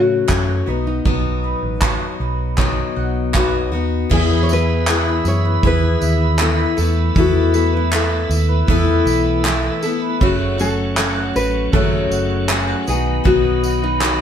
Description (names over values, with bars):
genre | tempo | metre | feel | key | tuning
acoustic pop | 79 BPM | 4/4 | straight | E major | A4 = 440 Hz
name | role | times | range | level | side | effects
nylon-string guitar | melody | 0.0-14.2 s | D#4 to C#5 | -23 LUFS | left 3 dB | none
picked steel-string acoustic guitar | accompaniment | 0.0-14.2 s | F#2 to A4 | -20 LUFS | left 4 dB | none
bowl-back mandolin | arpeggios | 0.0-14.2 s | G#3 to F#5 | -26 LUFS | right 3 dB | none
hollow-body short-scale fingered electric bass | bass | 0.0-14.2 s | F#1 to A2 | -20 LUFS | right 1 dB | none
modern studio drum kit | drums | 0.3-14.2 s | crash cymbal, handclaps, kick drum, tambourine | -20 LUFS | right 2 dB | none
group handclap | percussion | 0.3-14.2 s | none | -29 LUFS | right 6 dB | none
tonewheel organ | sustained chords | 4.1-14.2 s | D#3 to E4 | -30 LUFS | right 2 dB | fast rotary speaker
room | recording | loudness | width
moderate stone room reverb, RT60 1.1 s | band playing live in one room | -15 LUFS | side -8 dB against mid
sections
0.0-4.1 A section; 4.1-14.2 B section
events
none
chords
0.0 F#m; 0.7 B; 4.1 E; 6.8 Asus2; 10.2 F#m; 12.9 B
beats
0.29 | 1.06 1.82 2.58 3.35 | 4.11 4.88 5.64 6.40 | 7.16 7.93 8.69 9.45 | 10.21 10.97 11.73 12.49 | 13.25 14.01